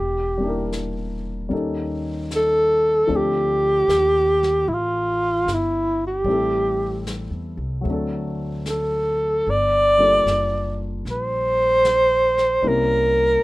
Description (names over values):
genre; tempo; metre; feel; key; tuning
jazz ballad; 76 BPM; 4/4; swing 66% on 8ths; unclear; A4 = 440 Hz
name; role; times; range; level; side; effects
breathy alto saxophone; melody; 0.0-13.4 s; E4 to D5; -18 LUFS; equal; none
upright bass; bass; 0.0-13.4 s; E1 to E2; -28 LUFS; equal; none
dark grand piano; accompaniment; 0.4-13.4 s; F3 to Bb4; -28 LUFS; left 3 dB; none
vintage brush drum kit; drums; 0.7-13.4 s; brushed snare drum, hi-hat, snare drum; -36 LUFS; left 1 dB; none
room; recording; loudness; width
light reverb; rough home demo mix; -18 LUFS; side -19 dB against mid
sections
0.0-13.4 A section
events
none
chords
0.0 Em7b5; 1.5 Eb7#11; 3.1 Dm7; 6.3 Am7; 7.8 D7; 9.5 Gm9; 12.6 C7b9